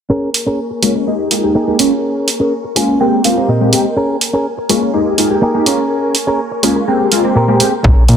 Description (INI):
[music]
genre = filtered disco house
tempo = 124 BPM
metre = 4/4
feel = straight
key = Bb dorian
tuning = A4 = 441 Hz
[part]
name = string machine, full ensemble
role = sustained chords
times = 0.1-8.2 s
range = Bb4 to Eb6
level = -22 LUFS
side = equal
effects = ensemble chorus, sidechain pumping, low-pass filter
[part]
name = direct-recorded clean electric guitar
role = riff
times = 0.1-8.0 s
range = Bb2 to Ab5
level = -16 LUFS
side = equal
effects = sidechain pumping, low-pass filter
[part]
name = electronic hi-hat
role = drums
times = 0.3-8.2 s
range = none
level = -15 LUFS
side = right 2 dB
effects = sidechain pumping on hats
[part]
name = funky polysynth comp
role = accompaniment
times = 0.8-7.7 s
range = Ab3 to G4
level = -14 LUFS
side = equal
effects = chorus, phaser, sidechain pumping, low-pass filter
[part]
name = fat analog bass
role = bass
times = 7.8-8.2 s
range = Bb1 to Bb2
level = -9 LUFS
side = equal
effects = sidechain pumping, low-pass filter
[part]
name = electronic kick drum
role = drums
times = 7.8-7.9 s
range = none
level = -9 LUFS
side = equal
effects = none
[part]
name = tambourine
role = percussion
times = 7.8-8.2 s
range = none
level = barely audible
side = none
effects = none
[sound]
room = light reverb, digital ambience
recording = none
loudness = -11 LUFS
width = side -8 dB against mid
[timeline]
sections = 0.1-8.2 A section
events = filter sweep 0.1-8.2; clean electric guitar fill 2.5-4.0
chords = 0.1 Bbm7; 1.1 Fm11; 1.8 Bbm7; 3.0 Abmaj9; 4.0 Bbm7; 4.9 Fm11; 5.7 Bbm7; 6.9 Abmaj9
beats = | 0.10 0.58 1.07 1.55 | 2.04 2.52 3.00 3.49 | 3.97 4.46 4.94 5.42 | 5.91 6.39 6.88 7.36 | 7.84